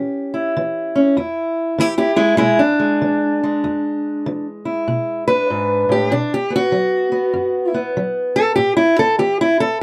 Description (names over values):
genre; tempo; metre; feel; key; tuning
acoustic country blues, solo or duo; 97 BPM; 4/4; swing 63% on 8ths; E mixolydian; A4 = 443 Hz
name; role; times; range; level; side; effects
fingerpicked steel-string acoustic guitar; solo; 0.0-9.8 s; E2 to B4; -18 LUFS; equal; none
room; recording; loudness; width
moderate booth ambience, RT60 0.2 s; dark, warm production; -18 LUFS; mono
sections
0.0-9.8 A section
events
steel-string acoustic guitar solo 0.0-9.8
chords
0.0 A7 (rootless); 1.2 E7; 6.1 B5; 8.6 A5